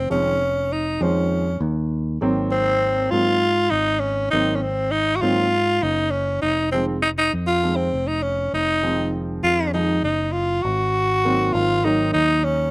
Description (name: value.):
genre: progressive instrumental, progressive.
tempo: 199 BPM (eighths).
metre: 7/8.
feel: straight.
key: unclear.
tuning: A4 = 441 Hz.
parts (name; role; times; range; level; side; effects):
growling tenor saxophone; melody; 0.0-12.7 s; C4 to Gb4; -19 LUFS; equal; none.
fingered electric bass; bass; 0.0-12.7 s; F1 to Ab2; -25 LUFS; equal; none.
warm grand piano; accompaniment; 0.1-12.7 s; Eb3 to C5; -24 LUFS; right 1 dB; none.
room: little or no reverb.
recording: recorded outdoors, with no room sound.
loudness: -18 LUFS.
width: side -25 dB against mid.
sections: 0.0-10.6 A section; 10.6-12.7 B section.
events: none.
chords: 0.0 Dbmaj7/F; 2.2 Ab7; 6.4 Fm7; 10.6 Ab7.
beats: | 0.10 0.41 0.71 1.01 1.31 1.61 1.92 | 2.22 2.52 2.82 3.12 3.42 3.72 4.03 | 4.33 4.63 4.93 5.23 5.53 5.83 6.13 | 6.43 6.74 7.04 7.34 7.64 7.94 8.24 | 8.54 8.84 9.14 9.44 9.74 10.04 10.34 | 10.64 10.95 11.24 11.55 11.85 12.15 12.45.